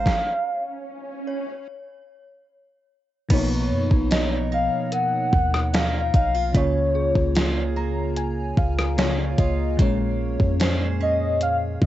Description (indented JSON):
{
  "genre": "contemporary R&B",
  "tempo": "74 BPM",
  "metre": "4/4",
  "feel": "straight",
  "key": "unclear",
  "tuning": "A4 = 440 Hz",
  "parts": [
    { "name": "warm velvety synth lead", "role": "melody", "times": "0.0-11.9 s", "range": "Db5 to Gb5", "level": "-24 LUFS", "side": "left 1 dB", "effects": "chorus, cassette tape, tape echo" },
    { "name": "FM electric piano with soft pad layer", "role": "accompaniment", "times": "0.0-11.9 s", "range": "Bb2 to Bb5", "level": "-26 LUFS", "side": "left 2 dB", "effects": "chorus, cassette tape" },
    { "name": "picked steel-string acoustic guitar", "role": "arpeggios", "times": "0.0-11.9 s", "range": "Db3 to C5", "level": "-30 LUFS", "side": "right 7 dB", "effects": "cassette tape, tape echo" },
    { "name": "clean 808-style bass", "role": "bass", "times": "0.0-11.9 s", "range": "Bb1 to Bb2", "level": "-25 LUFS", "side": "equal", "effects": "none" },
    { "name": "swell", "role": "sound effects", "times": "0.4-1.7 s", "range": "none", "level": "-34 LUFS", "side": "right 4 dB", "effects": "none" },
    { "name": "gated 80s digital drum machine", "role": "drums", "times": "0.1-11.9 s", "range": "crash cymbal, hi-hat, kick drum, rim click, snare drum", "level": "-22 LUFS", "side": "equal", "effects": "gated reverb, gated reverb snare, overdrive, cassette tape" },
    { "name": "synth chime", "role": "texture", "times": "1.3-7.7 s", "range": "Ab4 to Eb5", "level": "-36 LUFS", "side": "left 2 dB", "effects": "ensemble chorus, cassette tape, tape echo" }
  ],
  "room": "little or no reverb",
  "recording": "home recording on cassette, nothing above 7.9 kHz",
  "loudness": "-20 LUFS",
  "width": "side -14 dB against mid",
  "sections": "0.0-3.3 A section; 3.3-11.9 B section",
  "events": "stop 0.1-3.3; swell 0.4-3.3; FM electric piano fill 7.4-9.8",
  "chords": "0.1 N.C.; 3.3 Cbmaj9#11; 6.5 Db6; 9.8 Bbm9",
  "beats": "| 0.06 0.87 1.68 2.49 | 3.30 4.11 4.92 5.74 | 6.55 7.36 8.17 8.98 | 9.79 10.60 11.41"
}